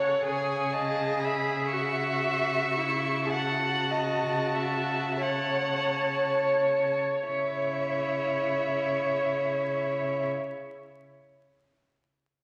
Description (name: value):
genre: classical, slow romantic movement for string quartet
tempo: 27-42 BPM (dotted quarters)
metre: 6/8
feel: rubato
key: C# minor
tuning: A4 = 440 Hz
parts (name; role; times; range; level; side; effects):
- rich violin; melody; 0.0-10.3 s; E5 to C#6; -36 LUFS; equal; none
- dark violin; second line; 0.0-10.3 s; E4 to F#5; -34 LUFS; equal; none
- warm viola; accompaniment; 0.0-10.3 s; E4 to C#5; -31 LUFS; equal; none
- warm cello; bass; 0.0-10.3 s; C#3; -37 LUFS; equal; none
room: wet scoring stage reverb, RT60 1.9 s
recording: vinyl crackle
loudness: -28 LUFS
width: mono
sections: 0.0-7.3 A section; 7.3-10.8 B section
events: slowing down 0.0-7.3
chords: 0.3 C#m; 3.3 F#m/C#; 7.3 C#m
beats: | 0.27 1.73 | 3.33 5.20 | 7.29 9.07